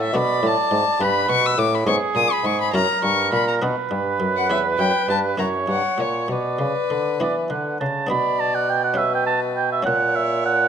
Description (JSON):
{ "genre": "classical, baroque-style sonata movement with continuo", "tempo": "68 BPM (dotted quarters)", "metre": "6/8", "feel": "straight", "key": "B minor", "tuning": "A4 = 442 Hz", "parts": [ { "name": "warm violin", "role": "melody", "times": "0.0-10.7 s", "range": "B4 to E6", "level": "-23 LUFS", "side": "left 8 dB", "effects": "none" }, { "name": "warm oboe", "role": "second line", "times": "0.0-10.7 s", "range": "G#4 to B5", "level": "-22 LUFS", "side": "right 6 dB", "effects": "none" }, { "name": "buff-stop harpsichord", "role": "accompaniment", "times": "0.0-10.7 s", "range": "E2 to A4", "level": "-28 LUFS", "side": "left 2 dB", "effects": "none" }, { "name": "warm bassoon", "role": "bass", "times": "0.0-10.7 s", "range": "E2 to E3", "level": "-24 LUFS", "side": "right 1 dB", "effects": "none" } ], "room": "moderate concert hall reverb, RT60 1.9 s", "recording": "close, detailed microphones", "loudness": "-18 LUFS", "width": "side -8 dB against mid", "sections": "0.0-8.1 A section; 8.1-10.7 B section", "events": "none", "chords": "0.0 D5; 1.0 G; 1.9 C#7/G#; 2.7 F#7; 3.6 Bm; 4.5 C#dim/E; 5.4 F#7; 6.3 Bm; 9.0 A9/B (rootless); 9.9 F#/A#" }